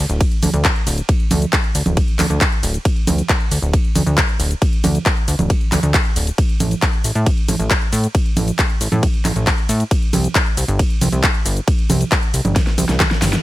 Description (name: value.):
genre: uplifting trance.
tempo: 136 BPM.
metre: 4/4.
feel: straight.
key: unclear.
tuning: A4 = 440 Hz.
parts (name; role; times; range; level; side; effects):
plucky analog bass; bass; 0.0-13.4 s; D1 to A2; -18 LUFS; equal; sidechain pumping.
big-room dance drum kit; drums; 0.1-13.4 s; congas, handclaps, hi-hat, ride cymbal, shaker, snare drum; -19 LUFS; right 1 dB; overdrive, sidechain pumping on hats, sidechain pumping on perc, sidechain pumping on cymbals.
electronic kick drum; drums; 0.2-13.1 s; none; -17 LUFS; equal; overdrive.
room: little or no reverb.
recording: none.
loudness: -14 LUFS.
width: side -16 dB against mid.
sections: 0.0-13.4 A section.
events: drop 0.0-13.4; drum fill 12.6-13.4.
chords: none.